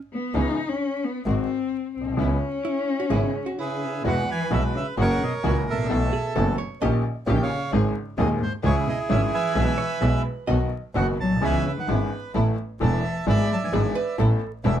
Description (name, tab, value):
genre	tango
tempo	130 BPM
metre	4/4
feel	rubato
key	C# minor, E major from 4.0 s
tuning	A4 = 442 Hz
part	warm cello	second line	0.1-14.8 s	G#2 to D#4	-28 LUFS	left 3 dB	none
part	warm baby grand piano	accompaniment	0.3-14.8 s	D#1 to A4	-26 LUFS	left 2 dB	none
part	rich studio string section	stabs	0.3-14.8 s	G#3 to A4	-32 LUFS	right 3 dB	none
part	clear double bass	bass	0.3-14.8 s	E1 to E2	-25 LUFS	right 1 dB	none
part	archtop guitar, miked and amplified	second line	2.6-10.8, 13.7-14.5 s	E4 to D#5	-31 LUFS	right 5 dB	none
part	bandoneon	melody	3.6-14.8 s	E4 to B5	-28 LUFS	right 4 dB	none
room	light reverb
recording	dark, warm production, vinyl crackle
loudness	-21 LUFS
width	side -10 dB against mid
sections	0.0-4.0 A section; 4.0-14.8 B section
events	cello solo 0.0-4.0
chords	0.3 C#m7; 1.3 G#7; 2.2 C#m7; 4.0 Eadd9; 5.0 F#7; 5.9 B7sus4; 6.8 D#7/A#; 7.7 G#; 8.6 C#m; 9.6 E/B; 10.5 B; 11.4 C#m7; 12.3 Asus2; 13.3 E7/G#; 14.2 Asus2